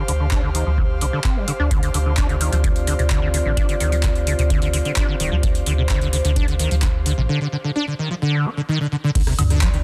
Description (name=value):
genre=acid house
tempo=129 BPM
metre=4/4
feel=straight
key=D minor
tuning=A4 = 440 Hz
part: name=acid bass, saw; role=riff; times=0.0-9.8 s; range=C3 to D4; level=-26 LUFS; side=equal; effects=overdrive, ensemble chorus, cassette tape, sidechain pumping, dub echo
part: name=airy breathy pad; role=texture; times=0.0-7.3 s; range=G4 to F5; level=-34 LUFS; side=equal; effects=chorus, sidechain pumping
part: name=round analog bass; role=bass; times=0.1-9.8 s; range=D1 to D2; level=-23 LUFS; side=equal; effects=tube saturation, sidechain pumping
part: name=booming analog drum machine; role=drums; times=0.1-9.8 s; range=crash cymbal, handclaps, hi-hat, rim click, toms, woodblock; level=-29 LUFS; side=equal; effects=none
part: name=electronic kick drum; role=drums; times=0.3-9.7 s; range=none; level=-23 LUFS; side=equal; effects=none
part: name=dark analog pad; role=sustained chords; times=1.7-9.8 s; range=C4 to D5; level=-31 LUFS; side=equal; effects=chorus, sidechain pumping
room=light reverb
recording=dense, heavily limited modern master, faint mains hum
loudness=-20 LUFS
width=mono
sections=0.0-9.2 A section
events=filter sweep on acid bass 0.0-9.2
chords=0.0 Dm7